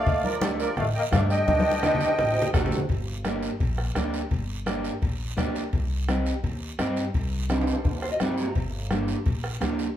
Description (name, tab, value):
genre	latin, cumbia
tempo	170 BPM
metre	4/4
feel	straight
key	G minor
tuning	A4 = 440 Hz
part	musette accordion	melody	0.0-2.5 s	A4 to G5	-25 LUFS	right 1 dB	none
part	brilliant trombone	second line	0.0-2.5 s	F3 to D4	-32 LUFS	left 6 dB	none
part	upright bass	bass	0.1-9.9 s	G1 to G2	-30 LUFS	equal	none
part	bombo	percussion	0.1-9.8 s	none	-28 LUFS	left 1 dB	none
part	congas	percussion	0.1-9.8 s	none	-32 LUFS	left 2 dB	none
part	cowbell and timbales	percussion	0.1-10.0 s	none	-34 LUFS	right 4 dB	none
part	guiro	percussion	0.1-10.0 s	none	-42 LUFS	right 5 dB	none
part	electric guitar at the edge of break-up	accompaniment	0.4-9.9 s	A3 to Bb5	-30 LUFS	right 1 dB	none
room	wet large studio reverb, RT60 0.9 s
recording	band playing live in one room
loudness	-23 LUFS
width	side -11 dB against mid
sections	0.0-2.9 A section; 2.9-10.0 B section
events	drum fill 1.5-2.9, 7.5-8.6; clean electric guitar fill 7.8-8.6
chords	0.1 Dsus4; 2.9 Gm; 5.7 Cm; 8.6 Gm